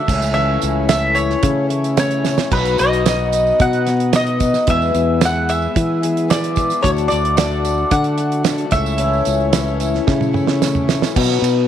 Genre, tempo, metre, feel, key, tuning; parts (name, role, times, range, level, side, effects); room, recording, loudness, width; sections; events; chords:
folk rock and heartland rock; 111 BPM; 4/4; straight; A4 = 440 Hz
mandolin; melody; 0.0-10.6 s; B4 to F#5; -19 LUFS; equal
picked twelve-string acoustic guitar; accompaniment; 0.0-11.7 s; E2 to G#4; -22 LUFS; left 13 dB
hand-pumped harmonium; sustained chords; 0.0-11.7 s; F#3 to E5; -27 LUFS; right 1 dB
fingered electric bass; bass; 0.1-11.7 s; B1 to E3; -19 LUFS; equal
damped 70s drum kit; drums; 0.1-11.6 s; crash cymbal, hi-hat, kick drum, ride cymbal, snare drum, toms; -20 LUFS; right 4 dB
tambourine; percussion; 0.1-11.6 s; -34 LUFS; right 16 dB
moderate spring reverb, RT60 2.4 s; 1960s-style stereo with parts hard left and right; -14 LUFS; side -10 dB against mid
0.0-11.2 A section
drum fill 2.2, 10.1-11.2
0.1 A/C#; 2.5 B; 4.7 E; 6.8 D; 8.7 A/C#; 11.2 B